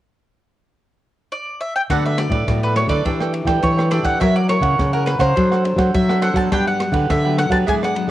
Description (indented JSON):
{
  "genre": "samba and choro",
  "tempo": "104 BPM",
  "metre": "4/4",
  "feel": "straight",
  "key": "D major",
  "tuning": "A4 = 441 Hz",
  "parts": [
    { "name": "bowl-back mandolin", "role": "melody", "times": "1.3-8.1 s", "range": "A#4 to A5", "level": "-22 LUFS", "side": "equal", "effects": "cassette tape" },
    { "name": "cavaquinho", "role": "accompaniment", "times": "1.9-8.1 s", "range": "D4 to G5", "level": "-24 LUFS", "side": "right 7 dB", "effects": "cassette tape" },
    { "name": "nylon-string guitar", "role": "accompaniment", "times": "1.9-8.1 s", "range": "G2 to A#4", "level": "-27 LUFS", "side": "left 8 dB", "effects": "cassette tape" },
    { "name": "nylon-string guitar", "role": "bass", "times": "1.9-8.1 s", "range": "A2 to G#3", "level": "-18 LUFS", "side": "equal", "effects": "none" },
    { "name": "open jazz drum kit", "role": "drums", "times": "1.9-8.1 s", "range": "kick drum, ride cymbal, rim click", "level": "-24 LUFS", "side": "equal", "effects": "none" }
  ],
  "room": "light reverb, studio reverb",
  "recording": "home recording on cassette",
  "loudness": "-15 LUFS",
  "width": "side -14 dB against mid",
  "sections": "0.0-1.9 A section; 1.9-8.1 B section",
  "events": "none",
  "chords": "0.0 N.C.; 1.9 D6; 3.1 A7sus4/E; 4.2 F#7; 5.4 D7/F#; 6.5 Gmaj7",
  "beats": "0.16 0.74 1.32 | 1.90 2.48 3.06 3.63 | 4.21 4.79 5.37 5.95 | 6.53 7.10 7.68"
}